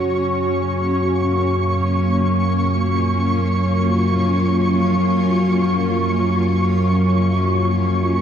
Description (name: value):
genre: dark ambient drone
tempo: free time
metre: none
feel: none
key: unclear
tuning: A4 = 439 Hz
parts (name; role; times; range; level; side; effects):
- granular cloud pad; sustained chords; 0.0-8.2 s; A#3 to C#5; -22 LUFS; equal; built-in reverb
- analog drone; drone; 0.0-8.2 s; F#2 to F#3; -18 LUFS; equal; chorus
- flickering grainy texture; texture; 0.0-8.2 s; C#6; -24 LUFS; equal; built-in reverb
room: wet cathedral reverb, RT60 7.2 s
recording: none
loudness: -16 LUFS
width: side -8 dB against mid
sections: 0.0-8.2 A section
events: none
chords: 0.0 A#m